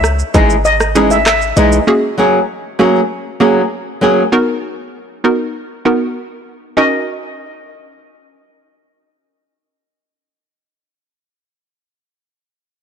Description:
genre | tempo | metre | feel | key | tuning
dancehall | 98 BPM | 4/4 | straight | Eb phrygian | A4 = 440 Hz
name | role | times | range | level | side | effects
steel pan | melody | 0.0-1.7, 6.8-8.6 s | Eb5 to Fb5 | -16 LUFS | left 1 dB | digital delay
warm 808-style bass | bass | 0.0-1.8 s | Ab1 to Db2 | -17 LUFS | equal | none
island pop drum kit | drums | 0.0-1.9 s | handclaps, hi-hat, kick drum, rim click, shaker | -16 LUFS | equal | none
hollow square pluck | accompaniment | 0.3-10.6 s | Bb3 to A#4 | -16 LUFS | right 2 dB | chorus
flamenco guitar | arpeggios | 0.3-4.2 s | Fb3 to Ab4 | -14 LUFS | equal | none
room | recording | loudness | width
light reverb | blown-out, overdriven recording, overdrive | -11 LUFS | side -7 dB against mid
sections
0.0-6.8 A section; 6.8-9.2 B section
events
none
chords
0.0 Dbmadd9; 1.9 Gbadd9; 4.3 Bmaj7; 6.8 Ebm7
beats
0.04 0.65 1.26 | 1.88 2.49 3.10 3.71 | 4.32 4.94 5.55 6.16 | 6.77 7.38 8.00 8.61

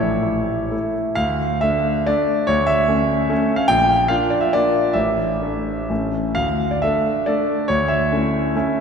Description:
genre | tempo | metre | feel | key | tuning
classical, romantic triple-time dance for piano with dotted rhythms | 112-158 BPM | 3/4 | rubato | D minor | A4 = 440 Hz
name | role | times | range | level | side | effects
clear concert grand piano | solo | 0.0-8.8 s | A1 to G5 | -17 LUFS | equal | none
room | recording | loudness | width
wet church reverb, RT60 2.7 s | none | -17 LUFS | side -6 dB against mid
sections
0.0-1.2 A section; 1.2-8.8 B section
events
none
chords
0.0 A; 1.2 Dm; 2.5 A/D; 3.7 Bb; 5.0 Asus4; 5.9 A; 6.4 D5; 7.7 A/D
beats
0.22 0.73 | 1.19 1.63 2.07 | 2.48 2.89 3.31 | 3.70 4.11 4.54 | 4.97 5.43 5.90 | 6.36 6.82 7.26 | 7.67 8.10 8.54

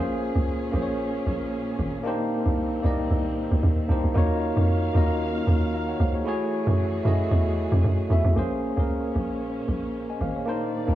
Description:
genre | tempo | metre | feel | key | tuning
amapiano | 114 BPM | 4/4 | swing 55% on 16ths | Bb minor | A4 = 440 Hz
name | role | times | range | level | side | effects
tine electric piano | accompaniment | 0.0-10.9 s | A3 to Bb5 | -26 LUFS | equal | fast stereo tremolo
warm studio string section | sustained chords | 0.0-10.9 s | Bb2 to F5 | -36 LUFS | right 1 dB | none
tight log drum bass | bass | 0.0-10.9 s | Ab1 to Gb2 | -24 LUFS | right 1 dB | none
room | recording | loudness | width
studio reverb | home recording on cassette, small room ambience | -22 LUFS | side -13 dB against mid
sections
0.0-8.4 A section; 8.4-10.9 B section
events
drop 0.0-8.4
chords
0.0 Bbm9; 2.1 Cm9; 4.2 Ebm9; 6.3 Gbm9; 8.4 Bbm9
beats
0.47 1.00 1.52 | 2.05 2.58 3.10 3.63 | 4.16 4.68 5.21 5.74 | 6.26 6.79 7.31 7.84 | 8.37 8.89 9.42 9.95 | 10.47

